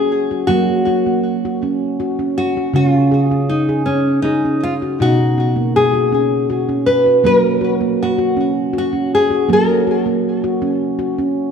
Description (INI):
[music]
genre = world meditative, meditative tuned percussion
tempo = 80 BPM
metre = 3/4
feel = straight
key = F# major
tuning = A4 = 440 Hz
[part]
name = nylon-string guitar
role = melody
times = 0.0-11.0 s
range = C#4 to B4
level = -17 LUFS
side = left 2 dB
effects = ping-pong delay
[part]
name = handpan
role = arpeggios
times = 0.0-11.5 s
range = B2 to G#4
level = -16 LUFS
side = right 1 dB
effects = none
[sound]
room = wet concert hall reverb, RT60 1.9 s, small room ambience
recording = cassette tape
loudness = -14 LUFS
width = side -6 dB against mid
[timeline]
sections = 0.0-11.5 A section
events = none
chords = 0.0 F#; 2.8 C#; 5.0 B; 7.3 F#